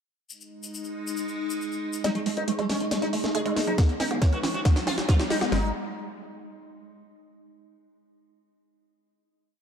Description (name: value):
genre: psychedelic trance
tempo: 138 BPM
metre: 4/4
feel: straight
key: G# phrygian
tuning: A4 = 440 Hz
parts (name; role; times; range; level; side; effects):
- evolving wavetable pad; sustained chords; 0.3-5.6 s; G#3 to D#4; -33 LUFS; left 1 dB; chorus, built-in reverb, sidechain pumping
- tube shaker; percussion; 0.3-2.0 s; none; -39 LUFS; left 5 dB; none
- sitar; melody; 2.0-5.7 s; F#3 to G#4; -32 LUFS; right 1 dB; phaser, sidechain pumping, low-pass filter, tape echo
- woody wave-folded pluck; riff; 2.0-5.7 s; F#3 to C#5; -30 LUFS; moving between left 4 dB and right 5 dB; chorus, auto-pan, sidechain pumping, tape echo
- techno drum kit; drums; 2.0-5.5 s; hi-hat, snare drum; -30 LUFS; right 1 dB; none
- riser; sound effects; 3.6-5.5 s; none; -36 LUFS; left 1 dB; none
- tight sequencer bass; bass; 2.3-5.7 s; F#1 to G#2; -34 LUFS; equal; none
- vowel-sweep wobble bass; second line; 2.4-4.3 s; G#3 to B3; -43 LUFS; right 2 dB; none
- garage drum kit; drums; 3.8-5.6 s; kick drum, snare drum; -21 LUFS; equal; none
room: moderate lush hall reverb, RT60 1.8 s, digital ambience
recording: dark, warm production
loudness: -24 LUFS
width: side -7 dB against mid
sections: 0.3-2.0 intro; 2.0-5.5 build; 5.5-7.3 final chord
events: build-up 2.0-5.5; drum fill 2.0-5.5; filter sweep on synth arpeggio sound 2.0-5.5; filter sweep on sitar 2.0-5.5; riser 3.6-5.5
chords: 0.3 G#5; 3.8 B5; 5.5 G#5